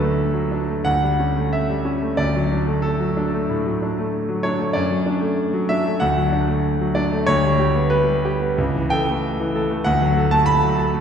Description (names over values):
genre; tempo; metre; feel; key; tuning
classical, romantic character piece for solo piano; 94 BPM; 4/4; uneven beats, rubato; D major; A4 = 438 Hz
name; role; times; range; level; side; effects
clear grand piano; solo; 0.0-11.0 s; C#2 to B5; -18 LUFS; equal; none
room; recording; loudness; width
wet scoring stage reverb, RT60 2.0 s; recorded in a church or concert hall; -18 LUFS; side -7 dB against mid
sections
0.0-11.0 A section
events
none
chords
0.0 D; 0.9 A7/D; 2.2 D; 4.8 D/F#; 6.0 D; 7.3 G/D; 8.6 A7/C#; 9.8 D